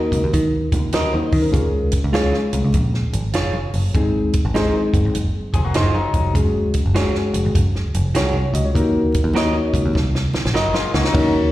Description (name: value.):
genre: uptempo 1960s-style soul.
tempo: 100 BPM.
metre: 4/4.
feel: swing 65% on 8ths.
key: unclear.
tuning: A4 = 445 Hz.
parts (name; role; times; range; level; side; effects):
reed electric piano; accompaniment; 0.0-11.5 s; Ab3 to Eb5; -21 LUFS; left 2 dB; plate reverb, slapback echo.
picked electric bass; bass; 0.1-11.5 s; F1 to Eb3; -20 LUFS; equal; none.
compact cocktail drum kit; drums; 0.1-11.3 s; hi-hat, kick drum, ride cymbal, snare drum; -21 LUFS; equal; none.
congas; percussion; 0.3-10.9 s; none; -32 LUFS; right 2 dB; none.
electric guitar through a small old amp; stabs; 0.9-10.7 s; Eb4 to Eb5; -24 LUFS; right 3 dB; plate reverb, slapback echo.
electric guitar through a small old amp; riff; 5.5-6.3, 10.5-11.3 s; Gb3 to Ab4; -24 LUFS; left 4 dB; slapback echo.
room: light reverb.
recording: live gig heard through the venue's PA, recital hall reverb, faint mains hum.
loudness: -16 LUFS.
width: side -15 dB against mid.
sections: 0.0-11.1 A section.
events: drum fill 10.0-11.1.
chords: 0.0 Ebm; 1.5 Db; 3.9 Ab; 6.3 Gbsus2; 8.8 Ebm.